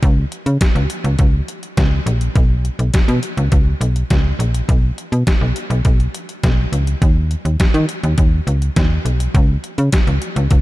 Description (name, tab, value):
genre	early-eighties boogie funk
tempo	103 BPM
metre	4/4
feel	straight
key	unclear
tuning	A4 = 440 Hz
part	slap-like FM bass	bass	0.0-10.6 s	Bb1 to D#3	-16 LUFS	equal	none
part	detuned 8-bit digital drum machine	drums	0.0-10.6 s	hi-hat, kick drum, snare drum	-17 LUFS	equal	overdrive
room	little or no reverb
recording	none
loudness	-14 LUFS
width	side -18 dB against mid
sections	0.0-10.6 A section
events	none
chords	none